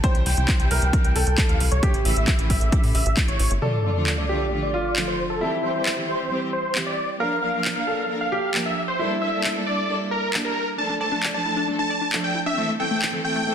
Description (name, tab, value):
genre	uplifting trance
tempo	134 BPM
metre	4/4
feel	straight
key	D minor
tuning	A4 = 440 Hz
part	big supersaw lead	melody	0.0-13.5 s	A4 to A5	-26 LUFS	equal	sidechain pumping, low-pass filter, ping-pong delay
part	clear baby grand piano	second line	0.0-10.7 s	E4 to C5	-29 LUFS	equal	vintage 12-bit sampler grit, ping-pong delay
part	warm studio string section	sustained chords	0.0-13.5 s	C3 to Bb4	-29 LUFS	right 1 dB	sidechain pumping
part	electronic kick drum	drums	0.0-3.3 s	none	-21 LUFS	equal	overdrive
part	house drum kit	drums	0.0-13.1 s	handclaps, hi-hat	-27 LUFS	equal	overdrive
part	tight sequencer bass	bass	0.1-3.6 s	G1 to A2	-22 LUFS	equal	sidechain pumping
part	sub drop	sound effects	3.6-5.4 s	none	-27 LUFS	equal	none
part	analog pluck	arpeggios	10.8-13.5 s	A3 to D5	-28 LUFS	left 4 dB	chorus, sidechain pumping, ping-pong delay
room	moderate lush hall reverb, RT60 1.9 s, digital ambience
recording	dense, heavily limited modern master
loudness	-20 LUFS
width	side -8 dB against mid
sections	0.0-3.6 A section; 3.6-13.5 B section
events	impact 3.6-5.4; filter sweep on supersaw synth 3.6-13.5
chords	0.0 C; 1.8 A; 3.6 Dm; 5.4 C; 7.2 Bb; 9.0 Gmadd9; 10.8 Dm/F; 12.6 Am